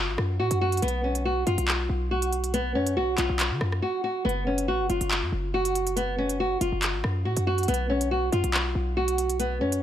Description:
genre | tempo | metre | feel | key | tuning
hip hop, drill | 140 BPM | 4/4 | half-time | unclear | A4 = 442 Hz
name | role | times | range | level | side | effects
nylon-string guitar | melody | 0.0-9.8 s | B3 to F#4 | -26 LUFS | equal | low-pass filter, digital delay
hard-hitting 808-style bass | bass | 0.0-9.8 s | F#1 to D3 | -28 LUFS | equal | none
drill drum kit | drums | 0.2-9.8 s | handclaps, hi-hat, rim click | -29 LUFS | equal | none
room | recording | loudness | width
little or no reverb | none | -24 LUFS | side -10 dB against mid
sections
0.0-9.8 A section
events
break 3.8-4.3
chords
0.0 F#m; 0.8 B5; 4.3 N.C.; 7.7 B5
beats
0.40 | 0.82 1.25 1.68 2.11 | 2.54 2.97 3.40 3.82 | 4.25 4.68 5.11 5.54 | 5.97 6.40 6.82 7.25 | 7.68 8.11 8.54 8.97 | 9.40 9.82

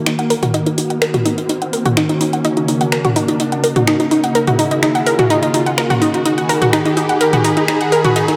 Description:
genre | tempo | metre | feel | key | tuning
melodic techno | 126 BPM | 4/4 | straight | unclear | A4 = 439 Hz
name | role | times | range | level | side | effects
warm analog pad | sustained chords | 0.0-8.4 s | Db3 to Cb6 | -22 LUFS | equal | lush chorus
swarming drone | drone | 0.0-8.4 s | Eb3 to Bb3 | -29 LUFS | equal | built-in reverb
riser | sound effects | 0.0-8.4 s | none | -26 LUFS | equal | none
analog pluck | arpeggios | 0.1-8.3 s | Eb4 to Gb5 | -18 LUFS | equal | chorus, dub echo
breakbeat sampler-style drum kit | drums | 0.1-8.4 s | hi-hat, snare drum | -34 LUFS | equal | none
house drum kit | drums | 0.1-8.4 s | finger snaps, hi-hat, toms | -22 LUFS | equal | small room ambience
room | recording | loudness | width
moderate lush hall reverb, RT60 2.1 s | none | -15 LUFS | mono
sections
0.0-8.4 A section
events
build-up 0.0-8.4; riser 0.0-8.4; filter sweep on synth arpeggio sound 0.0-8.4; filter sweep on analog synth pad 0.0-8.4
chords
0.0 Ebm; 2.4 Gb; 6.3 Abm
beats
0.07 | 0.54 1.02 1.49 1.97 | 2.45 2.92 3.40 3.87 | 4.35 4.83 5.30 5.78 | 6.25 6.73 7.21 7.68 | 8.16

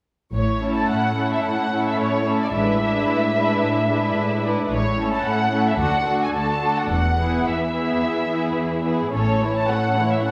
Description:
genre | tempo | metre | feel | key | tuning
quick classical-period movement for string orchestra | 109 BPM | 4/4 | straight | A major | A4 = 440 Hz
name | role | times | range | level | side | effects
muted studio violin section | melody | 0.3-10.3 s | C#5 to A5 | -27 LUFS | equal | none
muted studio cello section | bass | 0.3-10.3 s | D2 to A2 | -29 LUFS | equal | none
muted studio double bass section | bass | 0.3-9.6 s | E1 to D2 | -28 LUFS | equal | none
muted studio violin section | second line | 0.6-10.3 s | C#4 to C#5 | -28 LUFS | equal | none
muted studio viola section | accompaniment | 0.6-10.3 s | E3 to D4 | -26 LUFS | equal | none
room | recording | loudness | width
moderate scoring stage reverb, RT60 1.5 s | none | -21 LUFS | mono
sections
0.3-10.3 A section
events
none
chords
0.3 A; 2.5 E7/A; 4.7 A; 5.8 D; 6.9 E; 9.1 A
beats
| 0.34 0.89 1.44 1.99 | 2.54 3.08 3.62 4.16 | 4.71 5.25 5.80 6.35 | 6.90 7.46 8.02 8.58 | 9.13 9.69 10.24

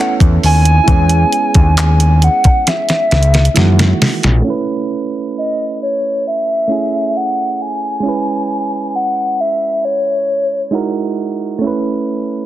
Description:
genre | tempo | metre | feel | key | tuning
contemporary R&B | 67 BPM | 4/4 | straight | E major | A4 = 441 Hz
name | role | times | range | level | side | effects
hollow clarinet-like synth lead | melody | 0.0-11.2 s | C#5 to G#5 | -16 LUFS | left 1 dB | chorus, digital delay
soft electric-piano-like synth keys | accompaniment | 0.0-12.5 s | D#3 to B4 | -19 LUFS | right 5 dB | chorus
large celesta | texture | 0.0-3.7 s | G#4 to A4 | -34 LUFS | left 5 dB | none
fat analog bass | bass | 0.2-4.4 s | A#1 to F#2 | -10 LUFS | equal | none
clean 12-bit digital drum machine | drums | 0.2-4.4 s | handclaps, hi-hat, kick drum, snare drum | -14 LUFS | equal | none
room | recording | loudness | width
digital ambience | dense, heavily limited modern master, low-pass filter | -12 LUFS | side -13 dB against mid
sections
0.0-4.5 A section; 4.5-12.5 B section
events
drum fill 2.7-4.5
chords
0.0 B9sus4; 0.9 E6; 3.6 F#13; 4.5 B9sus4; 8.0 E6; 10.7 F#13; 11.6 B9sus4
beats
| 0.88 1.77 2.67 3.56 | 4.46 5.35 6.25 7.14 | 8.04 8.94 9.83 10.73 | 11.62

